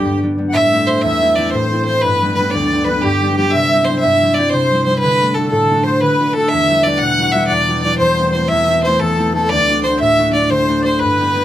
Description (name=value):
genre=celtic folk, Celtic slip jig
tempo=120 BPM (dotted quarters)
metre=9/8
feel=straight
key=unclear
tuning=A4 = 440 Hz
part: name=clear fiddle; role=melody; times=0.0-11.4 s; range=G4 to F#5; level=-16 LUFS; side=equal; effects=none
part: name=accordion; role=second line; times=0.0-11.4 s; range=G4 to F#5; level=-19 LUFS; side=equal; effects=none
part: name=concert harp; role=accompaniment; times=0.0-11.4 s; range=D2 to G4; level=-17 LUFS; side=left 1 dB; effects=none
part: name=rich cello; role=drone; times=0.0-0.6 s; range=G2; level=-32 LUFS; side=right 1 dB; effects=none
room=light reverb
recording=close, detailed microphones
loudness=-12 LUFS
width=side -12 dB against mid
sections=0.5-11.4 A section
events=none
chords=0.0 G; 0.5 Am; 2.0 G; 3.5 C; 5.0 D; 6.5 Emadd9; 8.0 Am/E; 9.5 D